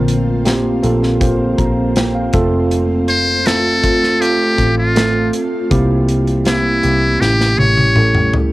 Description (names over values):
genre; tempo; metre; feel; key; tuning
pop ballad; 80 BPM; 4/4; straight; unclear; A4 = 443 Hz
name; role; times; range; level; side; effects
tine electric piano; accompaniment; 0.0-8.5 s; A2 to Bb5; -16 LUFS; right 1 dB; cassette tape
ethereal airy pad; sustained chords; 0.0-8.5 s; G3 to F4; -23 LUFS; equal; ensemble chorus, built-in reverb, phaser, cassette tape
vintage muted fingered electric bass; bass; 0.0-8.3 s; F1 to C2; -18 LUFS; equal; none
modern studio drum kit; drums; 0.1-8.5 s; hi-hat, kick drum, snare drum, toms; -18 LUFS; equal; cassette tape
trumpet with metal mute; melody; 3.1-8.3 s; E4 to C#5; -16 LUFS; left 1 dB; cassette tape
room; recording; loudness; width
little or no reverb; home recording on cassette; -12 LUFS; side -18 dB against mid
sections
0.0-8.5 A section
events
drum fill 7.2-8.5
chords
0.0 Bbsus2; 2.3 F; 5.7 C7; 7.2 A7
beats
0.46 1.21 1.96 | 2.71 3.46 4.21 4.96 | 5.71 6.46 7.21 7.96